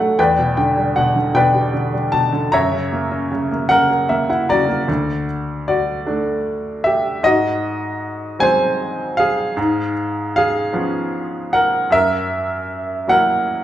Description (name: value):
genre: acoustic folk-pop ballad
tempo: 51 BPM (dotted quarters)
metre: 6/8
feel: straight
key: unclear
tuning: A4 = 440 Hz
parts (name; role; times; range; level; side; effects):
- bright baby grand piano; solo; 0.0-13.6 s; D2 to A#5; -16 LUFS; equal; none
room: wet large studio reverb, RT60 1.0 s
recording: band playing live in one room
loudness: -16 LUFS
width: side -12 dB against mid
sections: 0.0-4.9 A section; 4.9-13.6 B section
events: grand piano fill 3.7-4.9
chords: 0.2 Em7; 2.5 F#7; 4.9 D; 7.2 G#7; 9.6 C#7/G#; 11.9 F#7